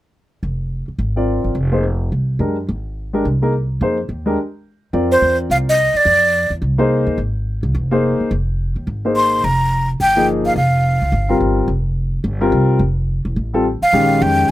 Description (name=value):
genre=modal jazz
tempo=213 BPM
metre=4/4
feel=swing 60% on 8ths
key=F dorian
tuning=A4 = 440 Hz
part: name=upright bass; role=bass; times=0.4-14.5 s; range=E1 to Gb2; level=-19 LUFS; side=equal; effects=none
part: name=warm grand piano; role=accompaniment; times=1.2-14.5 s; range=Eb3 to D5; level=-17 LUFS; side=left 2 dB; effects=none
part: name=breathy mellow silver concert flute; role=melody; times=5.1-6.5, 9.2-11.4, 13.8-14.5 s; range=C5 to C6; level=-14 LUFS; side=right 1 dB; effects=none
room=little or no reverb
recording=close, detailed microphones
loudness=-15 LUFS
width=side -15 dB against mid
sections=0.4-4.9 A section; 4.9-13.9 B section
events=stop 4.4-4.9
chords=0.4 Fm7; 9.4 Gm7/F; 12.8 F; 13.9 Bbm7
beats=| 0.43 0.71 0.99 1.27 | 1.56 1.84 2.12 2.40 | 2.68 2.96 3.24 3.53 | 3.81 4.09 4.37 4.65 | 4.93 5.21 5.50 5.78 | 6.06 6.34 6.62 6.90 | 7.18 7.46 7.75 8.03 | 8.31 8.59 8.87 9.15 | 9.43 9.72 10.00 10.28 | 10.56 10.84 11.12 11.40 | 11.69 11.97 12.25 12.53 | 12.81 13.09 13.37 13.65 | 13.93 14.21 14.49